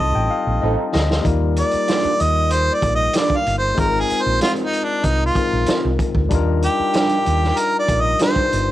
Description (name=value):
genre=lush 1970s-style soul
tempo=95 BPM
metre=4/4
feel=straight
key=Eb major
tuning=A4 = 441 Hz
part: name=warm harmonica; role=melody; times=0.0-8.7 s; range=D4 to F5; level=-19 LUFS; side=right 1 dB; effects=cassette tape, plate reverb
part: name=overdriven tine electric piano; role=accompaniment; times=0.0-8.7 s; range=G3 to C6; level=-23 LUFS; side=left 7 dB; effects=cassette tape
part: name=hollow-body short-scale fingered electric bass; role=bass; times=0.0-8.7 s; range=G1 to Eb2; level=-20 LUFS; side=right 1 dB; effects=transformer saturation
part: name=electric guitar through a small old amp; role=riff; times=0.6-8.4 s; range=G3 to A4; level=-24 LUFS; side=right 6 dB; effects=ensemble chorus, cassette tape
part: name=vintage drum kit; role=drums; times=0.9-8.7 s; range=hi-hat, kick drum, snare drum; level=-23 LUFS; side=right 1 dB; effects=cassette tape
room=light reverb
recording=home recording on cassette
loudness=-16 LUFS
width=side -14 dB against mid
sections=0.0-1.3 A section; 1.3-8.7 B section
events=tine electric piano fill 0.0-1.3; drum fill 0.0-1.3; harmonica solo 1.3-8.7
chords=0.0 F7/A; 1.3 Ebmaj9; 3.8 Ab6; 6.3 Ebmaj9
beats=0.62 | 1.25 1.89 2.52 3.15 | 3.78 4.41 5.05 5.68 | 6.31 6.94 7.57 8.21